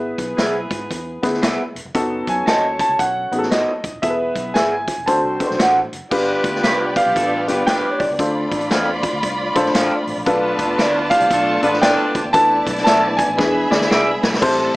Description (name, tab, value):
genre	uptempo 1960s-style soul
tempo	116 BPM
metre	4/4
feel	swing 63% on 8ths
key	unclear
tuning	A4 = 441 Hz
part	warm grand piano	melody	0.0-14.2 s	C#5 to A5	-19 LUFS	equal	none
part	dark horn section	second line	0.0-12.2 s	G3 to D5	-24 LUFS	equal	none
part	warm upright piano	accompaniment	0.0-14.8 s	B3 to D5	-21 LUFS	left 1 dB	none
part	vintage muted fingered electric bass	bass	0.0-14.7 s	D#1 to G#2	-33 LUFS	equal	none
part	swinging big-band drum kit	drums	0.2-14.6 s	crash cymbal, hi-hat, kick drum, snare drum	-22 LUFS	equal	none
part	electric guitar through a small old amp	stabs	0.4-14.1 s	F#4 to F#5	-20 LUFS	right 1 dB	phaser
part	warm studio violin section	second line	6.1-14.8 s	B3 to B5	-24 LUFS	equal	none
part	percussive tonewheel organ	sustained chords	6.1-14.8 s	E3 to F4	-28 LUFS	equal	overdrive, chorus vibrato, slow rotary speaker
room	moderate club reverb, RT60 0.6 s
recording	small speaker sound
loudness	-15 LUFS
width	side -20 dB against mid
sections	0.0-6.1 A section; 6.1-14.4 B section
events	drum fill 13.4-14.4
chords	0.0 E/G#; 1.9 B7/F#; 4.0 E; 5.1 D7; 6.1 G7; 8.2 Dm7; 10.3 Bm7b5; 12.3 E7sus4; 13.4 E7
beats	0.38 0.90 1.43 | 1.95 2.47 2.99 3.51 | 4.03 4.55 5.08 5.60 | 6.12 6.64 7.16 7.68 | 8.20 8.71 9.23 9.75 | 10.27 10.79 11.31 11.83 | 12.35 12.86 13.38 13.90 | 14.42